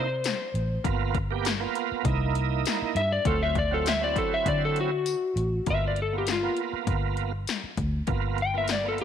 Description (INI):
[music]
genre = straight-eighth soul blues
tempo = 100 BPM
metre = 4/4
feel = swing 53% on 16ths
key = unclear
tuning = A4 = 440 Hz
[part]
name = electric slide guitar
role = melody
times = 0.0-9.0 s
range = F4 to G5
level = -27 LUFS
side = left 3 dB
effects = none
[part]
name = bright tonewheel organ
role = accompaniment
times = 0.0-9.0 s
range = F#3 to G4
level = -31 LUFS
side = right 14 dB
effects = slow rotary speaker, overdrive, chorus vibrato
[part]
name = vintage muted fingered electric bass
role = bass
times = 0.0-9.0 s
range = G1 to D3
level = -29 LUFS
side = equal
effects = none
[part]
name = 80s electronic pad drums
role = drums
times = 0.2-9.0 s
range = hi-hat, kick drum, snare drum, tambourine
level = -31 LUFS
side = left 3 dB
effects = none
[sound]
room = light reverb, digital ambience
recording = 1960s-style stereo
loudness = -24 LUFS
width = side -9 dB against mid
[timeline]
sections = 0.0-5.7 A section; 5.7-9.0 B section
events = electric slide guitar solo 0.0-5.7; break 5.1-5.7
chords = 0.0 C7#9; 0.8 G7#9; 2.1 C7#9; 3.3 D7#9; 5.7 G7#9